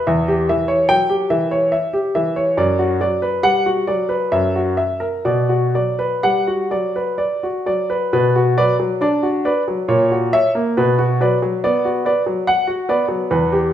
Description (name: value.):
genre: classical, baroque-style suite movement for grand piano.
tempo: 61-73 BPM.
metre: 3/4.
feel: rubato.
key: B minor.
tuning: A4 = 439 Hz.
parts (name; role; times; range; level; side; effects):
warm grand piano; solo; 0.0-13.7 s; E2 to G5; -15 LUFS; equal; none.
room: wet recital hall reverb, RT60 1.4 s.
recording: minimal, uncompressed stereo recording.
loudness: -15 LUFS.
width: side -10 dB against mid.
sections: 0.0-8.1 A section; 8.1-13.7 B section.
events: none.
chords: 0.1 C#dim/E; 2.6 Bm/F#; 4.3 F#7; 5.3 Bm; 9.9 F#7/A#; 10.8 Bm.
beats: | 0.07 0.90 1.72 | 2.57 3.43 4.33 | 5.26 6.24 7.20 | 8.14 9.03 9.91 | 10.78 11.65 12.48 | 13.32.